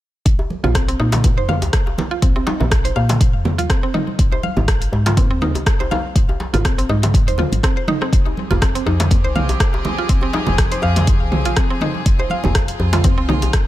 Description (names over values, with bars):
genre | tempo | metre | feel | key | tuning
afro house | 122 BPM | 4/4 | swing 55% on 16ths | unclear | A4 = 440 Hz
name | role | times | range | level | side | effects
woody FM bass | bass | 0.3-13.5 s | F1 to Bb2 | -19 LUFS | equal | sidechain pumping
deep house drum kit | drums | 0.3-13.6 s | hi-hat, rim click, toms | -23 LUFS | equal | none
electronic kick drum | drums | 0.3-13.6 s | none | -16 LUFS | equal | none
djembe | percussion | 0.4-13.5 s | none | -26 LUFS | left 1 dB | none
congas | percussion | 0.5-13.5 s | none | -26 LUFS | right 4 dB | none
mallet-like synth pluck | arpeggios | 0.6-13.4 s | C4 to F5 | -24 LUFS | equal | chorus, sidechain pumping, ping-pong delay
rich chamber string section | sustained chords | 8.1-13.7 s | F3 to Ab4 | -26 LUFS | left 1 dB | sidechain pumping
room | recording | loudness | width
little or no reverb | none | -15 LUFS | side -14 dB against mid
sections
0.3-13.7 A section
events
none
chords
0.3 Bbsus4; 4.2 Ab; 8.1 Fm7